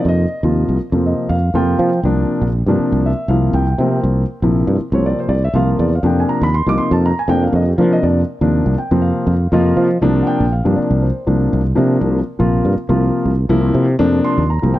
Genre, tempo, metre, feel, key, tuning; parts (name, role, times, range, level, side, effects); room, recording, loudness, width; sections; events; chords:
electric jazz fusion; 120 BPM; 4/4; swing 54% on 16ths; A4 = 440 Hz
dark grand piano; accompaniment; 0.0-14.8 s; C3 to D6; -16 LUFS; left 1 dB
sustaining fretless electric bass; bass; 0.0-14.8 s; Bb1 to F3; -15 LUFS; right 1 dB
studio ambience; dry, close 1970s-style studio recording; -13 LUFS; side -15 dB against mid
0.0-14.8 A section
grand piano fill 8.5-10.0
0.0 F9sus4; 2.0 C9sus4; 6.0 F7sus4; 10.0 C9sus4; 14.0 F7sus4